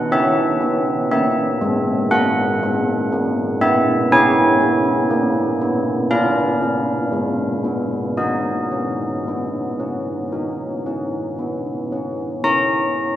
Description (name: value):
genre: classical, tune for church bells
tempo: 56-61 BPM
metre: 4/4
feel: straight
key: unclear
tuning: A4 = 436 Hz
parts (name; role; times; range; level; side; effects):
- old church bells; solo; 0.0-13.2 s; G#3 to A#5; -17 LUFS; equal; none
room: moderate recital hall reverb, RT60 1.4 s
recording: none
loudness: -17 LUFS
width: side -12 dB against mid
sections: 0.0-12.4 A section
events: none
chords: 0.1 F#7; 4.1 A#m7; 6.1 Ddim7; 8.2 D#5; 12.4 A#dim/C#